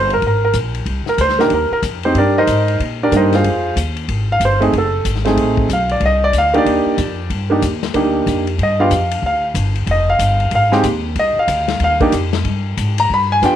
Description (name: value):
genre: jazz piano trio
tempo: 186 BPM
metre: 4/4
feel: swing 64% on 8ths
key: C minor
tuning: A4 = 440 Hz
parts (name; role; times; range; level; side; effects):
- warm concert grand piano; melody; 0.0-13.6 s; Ab3 to B5; -15 LUFS; right 1 dB; none
- upright bass; bass; 0.0-13.6 s; F1 to Bb2; -19 LUFS; equal; none
- swinging big-band drum kit; drums; 0.1-13.5 s; hi-hat, kick drum, ride cymbal, snare drum; -24 LUFS; left 5 dB; none
room: light reverb, studio ambience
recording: 1960s-style stereo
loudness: -13 LUFS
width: side -10 dB against mid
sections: 0.0-13.6 A section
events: grand piano solo 0.0-13.6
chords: 0.0 N.C.; 0.9 Cm9; 3.4 Fm7; 4.7 F#dim7; 6.0 Cm9; 8.6 G7(no3); 9.9 Fm7; 11.2 Cmadd9; 12.4 G7